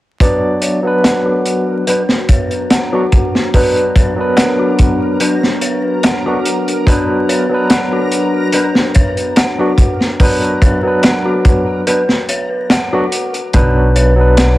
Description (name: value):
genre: trip hop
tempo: 72 BPM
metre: 4/4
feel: straight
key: B harmonic minor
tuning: A4 = 442 Hz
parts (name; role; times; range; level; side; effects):
- barky tine electric piano; accompaniment; 0.2-14.6 s; F#3 to D5; -16 LUFS; equal; overdrive, tremolo, vintage 12-bit sampler grit, tape echo
- warbly tape-like pad; sustained chords; 1.2-13.5 s; F#3 to F#4; -21 LUFS; left 1 dB; chorus, built-in reverb
- dark detuned synth bell; arpeggios; 0.2-14.6 s; F#4 to F#5; -19 LUFS; left 1 dB; chorus, low-pass filter, digital delay
- crunchy breakbeat drum kit; drums; 0.2-14.6 s; hi-hat, kick drum, snare drum; -13 LUFS; equal; none
- backwards swelling texture; texture; 1.7-13.6 s; A#4 to A#5; -27 LUFS; right 2 dB; built-in reverb
- darbuka; percussion; 1.0-12.9 s; none; -24 LUFS; left 1 dB; none
- upright bass; bass; 13.5-14.6 s; B1; -11 LUFS; equal; none
room: light reverb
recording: vinyl crackle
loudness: -11 LUFS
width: side -16 dB against mid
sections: 0.2-13.5 A section; 13.5-14.6 B section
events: filter sweep on synth bell 0.2-13.5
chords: 0.2 Bm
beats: | 0.20 1.04 1.87 2.70 | 3.54 4.37 5.20 6.04 | 6.87 7.70 8.54 9.37 | 10.20 11.04 11.87 12.70 | 13.54 14.37